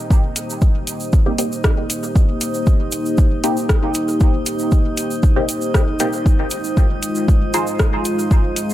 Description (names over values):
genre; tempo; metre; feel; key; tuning
dub techno; 117 BPM; 4/4; straight; C minor; A4 = 441 Hz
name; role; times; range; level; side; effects
dark analog pad; sustained chords; 0.0-8.7 s; Ab3 to C5; -23 LUFS; equal; chorus, sidechain pumping
drifting glass-harmonics texture; texture; 0.0-8.7 s; Eb4 to Eb5; -31 LUFS; right 1 dB; chorus, built-in reverb, sidechain pumping
electronic kick drum; drums; 0.1-8.4 s; none; -14 LUFS; equal; overdrive
tube shaker; percussion; 0.1-8.7 s; none; -29 LUFS; right 2 dB; none
deep house drum kit; drums; 0.4-8.7 s; hi-hat, rim click; -24 LUFS; left 1 dB; overdrive, dub echo
filtered dub chord stab; stabs; 1.3-7.7 s; Bb3 to C5; -24 LUFS; equal; phaser, sidechain pumping, dub echo
room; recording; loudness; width
little or no reverb; none; -15 LUFS; side -14 dB against mid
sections
0.0-8.7 A section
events
none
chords
0.0 Cm7; 6.3 Fm7